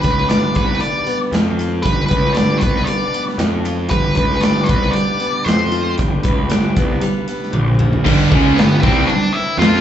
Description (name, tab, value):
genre	quiet-loud alternative rock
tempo	116 BPM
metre	4/4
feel	straight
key	G major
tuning	A4 = 440 Hz
part	octave-fuzz lead guitar	melody	0.0-9.8 s	B3 to F5	-20 LUFS	equal	distortion, slapback echo, analog delay
part	picked steel-string acoustic guitar	arpeggios	0.0-8.1 s	Bb2 to B4	-22 LUFS	left 2 dB	slapback echo
part	fuzz picked electric bass	bass	0.0-9.8 s	G1 to F2	-18 LUFS	equal	overdrive
part	big rock drum kit	drums	0.0-9.7 s	crash cymbal, hi-hat, kick drum, snare drum, toms	-18 LUFS	equal	none
part	warm studio string section	sustained chords	8.0-9.8 s	F3 to G5	-30 LUFS	left 1 dB	none
part	high-gain distorted guitar	riff	8.0-9.8 s	G2 to F4	-22 LUFS	right 1 dB	distortion
part	thick fuzz guitar	riff	8.0-9.8 s	G2 to F4	-18 LUFS	right 10 dB	distortion
part	high-gain distorted guitar	riff	8.1-9.8 s	G2 to F4	-21 LUFS	left 11 dB	distortion, slapback echo
room	little or no reverb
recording	live gig heard through the venue's PA, club reverb, nothing above 8.0 kHz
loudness	-14 LUFS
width	side -10 dB against mid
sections	0.0-8.1 A section; 8.1-9.8 B section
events	drum fill 7.5-8.1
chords	0.0 G; 1.3 N.C.; 1.8 G; 3.4 N.C.; 3.9 G; 5.5 F5; 6.0 G; 7.5 N.C.; 8.1 G